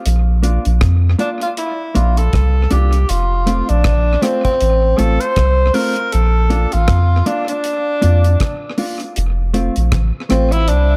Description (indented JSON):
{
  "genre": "roots reggae",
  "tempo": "79 BPM",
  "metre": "4/4",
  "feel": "swing 58% on 16ths",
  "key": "unclear",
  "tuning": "A4 = 439 Hz",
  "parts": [
    { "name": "soft dub sub bass", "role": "bass", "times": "0.1-11.0 s", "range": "F1 to F2", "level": "-16 LUFS", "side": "equal", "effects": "none" },
    { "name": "deep reggae drum kit", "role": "drums", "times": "0.1-10.9 s", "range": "hi-hat, kick drum, rim click", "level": "-23 LUFS", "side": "equal", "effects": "tape echo" },
    { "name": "mellow electric guitar", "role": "accompaniment", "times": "0.4-10.5 s", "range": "A3 to F4", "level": "-25 LUFS", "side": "equal", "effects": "tape echo" },
    { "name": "warm tenor saxophone", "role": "melody", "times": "1.2-11.0 s", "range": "C4 to C5", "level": "-21 LUFS", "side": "equal", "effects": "tape echo" }
  ],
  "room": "light reverb, studio reverb",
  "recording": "echo-heavy mix",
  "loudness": "-15 LUFS",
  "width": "mono",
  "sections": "0.0-11.0 A section",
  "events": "none",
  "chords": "0.1 Bb; 3.1 F; 6.1 Bb; 9.2 F",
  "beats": "| 0.05 0.81 1.57 2.33 | 3.09 3.85 4.61 5.36 | 6.12 6.88 7.64 8.40 | 9.16 9.92 10.68"
}